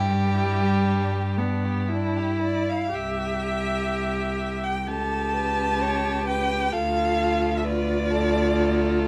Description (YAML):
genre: classical, slow romantic movement for string quartet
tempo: 58-66 BPM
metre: 4/4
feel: rubato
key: C major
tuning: A4 = 440 Hz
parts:
  - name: rich violin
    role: melody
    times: 0.0-9.1 s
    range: D4 to A5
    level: -30 LUFS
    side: equal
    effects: none
  - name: warm violin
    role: second line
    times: 0.0-9.1 s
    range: G4 to C#5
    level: -33 LUFS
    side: equal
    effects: none
  - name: rich viola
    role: accompaniment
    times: 0.0-9.1 s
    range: G3 to G4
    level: -30 LUFS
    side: equal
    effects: none
  - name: rich cello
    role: bass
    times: 0.0-9.1 s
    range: C2 to G2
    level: -29 LUFS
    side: equal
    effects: none
room: light reverb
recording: close, detailed microphones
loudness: -24 LUFS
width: mono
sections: 0.0-2.9 A section; 2.9-9.1 B section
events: none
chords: 0.0 C/G (rootless); 0.9 G; 2.9 C; 4.9 A7/C#; 6.7 Dm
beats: 0.88 1.90 | 2.92 3.92 4.87 5.81 | 6.72 7.63 8.54